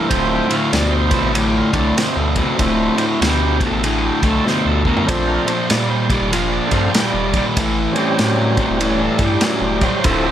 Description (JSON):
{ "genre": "blues rock power trio and southern rock", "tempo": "96 BPM", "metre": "4/4", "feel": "swing 63% on 8ths", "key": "D minor", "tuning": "A4 = 440 Hz", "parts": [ { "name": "overdriven tonewheel organ", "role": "sustained chords", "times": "0.0-10.3 s", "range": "C3 to G5", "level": "-22 LUFS", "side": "right 3 dB", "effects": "slow rotary speaker" }, { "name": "fuzz guitar", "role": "riff", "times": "0.0-10.3 s", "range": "D2 to G3", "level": "-17 LUFS", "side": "left 1 dB", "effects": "distortion" }, { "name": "warm sub bass", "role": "bass", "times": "0.1-10.3 s", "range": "D1 to Bb2", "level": "-22 LUFS", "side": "equal", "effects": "none" }, { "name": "vintage drum kit", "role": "drums", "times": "0.1-10.2 s", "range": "kick drum, ride cymbal, snare drum, toms", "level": "-21 LUFS", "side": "equal", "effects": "none" } ], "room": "moderate large studio reverb, RT60 1.0 s", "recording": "none", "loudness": "-14 LUFS", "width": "side -10 dB against mid", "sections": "0.0-10.3 A section", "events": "tonewheel organ solo 0.0-10.3; drum fill 4.5-5.1", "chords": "0.1 Dm7; 5.1 Bbmaj7; 7.6 A7#9" }